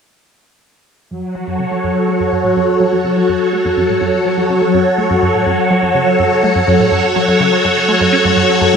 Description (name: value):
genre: ambient, sequencer-driven space music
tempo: 124 BPM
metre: 4/4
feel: straight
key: F# minor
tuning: A4 = 438 Hz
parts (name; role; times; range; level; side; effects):
- phased string machine; sustained chords; 1.1-8.8 s; F#3 to C#5; -12 LUFS; equal; ensemble chorus, phaser
- resonant blip pluck; riff; 1.1-8.8 s; F#2 to C#4; -20 LUFS; equal; phaser, ensemble chorus, ping-pong delay
- wind-like tuned noise texture; texture; 3.3-8.8 s; F#4 to F#5; -29 LUFS; right 1 dB; none
room: wet lush hall reverb, RT60 2.8 s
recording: none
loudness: -11 LUFS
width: side -6 dB against mid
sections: 1.1-8.8 A section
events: fade-in on synth arpeggio sound 1.1-8.8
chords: 1.1 F#m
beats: | 1.11 1.59 2.08 2.56 | 3.04 3.53 4.01 4.50 | 4.98 5.46 5.95 6.43 | 6.92 7.40 7.88 8.37